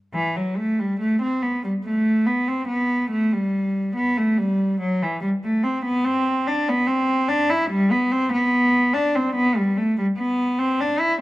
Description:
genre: classical, baroque-style suite movement for unaccompanied cello.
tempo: 72 BPM.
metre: 3/4.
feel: rubato.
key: unclear.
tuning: A4 = 440 Hz.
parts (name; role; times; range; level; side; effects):
rich cello; solo; 0.1-11.2 s; E3 to E4; -19 LUFS; equal; none.
room: light reverb.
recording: close, detailed microphones.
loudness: -19 LUFS.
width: side -17 dB against mid.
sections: 0.1-11.2 A section.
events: none.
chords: none.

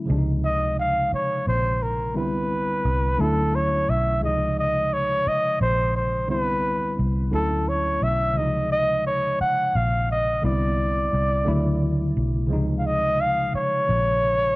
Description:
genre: slow six-eight R&B.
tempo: 58 BPM (dotted quarters).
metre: 6/8.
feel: straight.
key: unclear.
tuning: A4 = 440 Hz.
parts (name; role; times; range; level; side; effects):
tine electric piano; accompaniment; 0.0-14.6 s; C3 to E4; -27 LUFS; equal; overdrive, fast stereo tremolo, cassette tape.
vintage muted fingered electric bass; bass; 0.1-14.6 s; Bb1 to D2; -25 LUFS; equal; none.
breathy flugelhorn; melody; 0.4-14.6 s; A4 to Gb5; -23 LUFS; equal; cassette tape.
room: moderate small room reverb, RT60 0.5 s.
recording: home recording on cassette.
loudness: -20 LUFS.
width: side -21 dB against mid.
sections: 0.1-14.6 A section.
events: none.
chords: 0.1 Dbmaj9; 2.1 Cmaj9; 3.2 Dmaj9; 4.2 Dbmaj9; 6.3 Cmaj9; 7.3 Dmaj9; 8.4 Dbmaj9; 10.4 Cmaj9; 11.5 Dmaj9; 12.5 Dbmaj9.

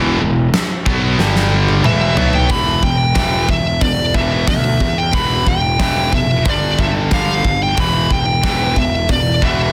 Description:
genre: heavy metal.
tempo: 91 BPM.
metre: 4/4.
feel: straight.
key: E minor.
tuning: A4 = 444 Hz.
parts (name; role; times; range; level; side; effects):
heavy high-gain guitar; riff; 0.0-9.7 s; E2 to B3; -23 LUFS; equal; distortion.
tight distorted guitar; riff; 0.0-9.7 s; E2 to B3; -25 LUFS; equal; distortion.
tight distorted guitar; riff; 0.0-2.5 s; E2 to B3; -24 LUFS; equal; distortion.
fuzz picked electric bass; bass; 0.0-9.7 s; E1 to E2; -22 LUFS; equal; overdrive.
big rock drum kit; drums; 0.5-9.6 s; china cymbal, hi-hat, kick drum, snare drum, toms; -21 LUFS; equal; none.
high-gain lead guitar; melody; 1.9-9.7 s; D5 to B5; -20 LUFS; equal; distortion, delay.
room: light reverb.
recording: dense, heavily limited modern master.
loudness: -15 LUFS.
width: mono.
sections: 0.0-2.5 A section; 2.5-9.7 B section.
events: drum fill 1.2-2.5.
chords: 0.0 E5; 1.2 G5; 1.9 E5; 2.5 Em; 6.5 G5; 7.8 Em.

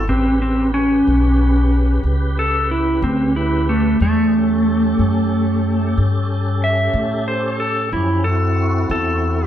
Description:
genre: slow blues.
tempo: 61 BPM (dotted quarters).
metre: 12/8.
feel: straight.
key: A mixolydian.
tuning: A4 = 440 Hz.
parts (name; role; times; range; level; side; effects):
clean lap steel guitar; melody; 0.0-9.5 s; A3 to E5; -17 LUFS; equal; none.
tonewheel organ; sustained chords; 0.0-9.5 s; C#3 to C5; -25 LUFS; equal; slow rotary speaker, overdrive, chorus vibrato.
upright bass; bass; 0.0-9.5 s; A1 to A2; -19 LUFS; equal; none.
room: moderate large studio reverb, RT60 1.1 s.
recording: band playing live in one room.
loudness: -15 LUFS.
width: side -11 dB against mid.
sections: 0.0-9.5 A section.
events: electric slide guitar solo 0.0-9.5.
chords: 0.1 A9; 7.9 D9 (rootless).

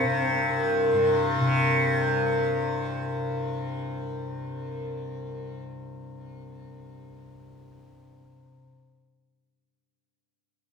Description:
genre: indian classical.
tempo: 196 BPM.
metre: 4/4.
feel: straight.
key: unclear.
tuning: A4 = 440 Hz.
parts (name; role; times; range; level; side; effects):
tanpura; drone; 0.0-8.5 s; C2 to C3; -25 LUFS; left 1 dB; none.
room: wet stone room reverb, RT60 1.2 s.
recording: band playing live in one room.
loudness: -24 LUFS.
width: side -5 dB against mid.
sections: 0.0-1.6 A section.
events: none.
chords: none.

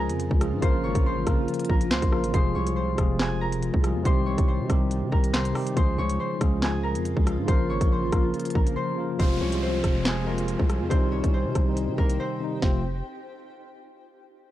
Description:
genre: hip hop, drill.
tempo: 140 BPM.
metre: 4/4.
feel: half-time.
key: F minor.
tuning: A4 = 440 Hz.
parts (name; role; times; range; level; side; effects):
concert harp; melody; 0.0-12.8 s; Ab3 to Db6; -32 LUFS; left 2 dB; none.
tine electric piano; accompaniment; 0.0-12.8 s; C3 to Bb4; -28 LUFS; equal; medium stereo tremolo.
granular cloud pad; sustained chords; 0.0-12.8 s; C3 to Ab5; -36 LUFS; right 1 dB; built-in reverb.
growling 808-style bass; bass; 0.0-13.0 s; F1 to C3; -29 LUFS; equal; none.
drill drum kit; drums; 0.1-12.7 s; handclaps, hi-hat, kick drum, rim click, snare drum; -24 LUFS; equal; none.
downlifter; sound effects; 9.2-12.6 s; none; -40 LUFS; equal; none.
room: little or no reverb.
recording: dry, gritty hardware recording.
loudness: -22 LUFS.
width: side -14 dB against mid.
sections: 0.0-9.2 A section; 9.2-12.6 B section; 12.6-14.3 C section.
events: break 8.8-9.2, 12.2-12.6.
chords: 0.0 Db; 0.6 Bbm; 2.3 Fm; 4.1 Cm; 5.8 Db; 7.5 Bbm; 9.2 Fm; 10.9 Cm; 12.6 F.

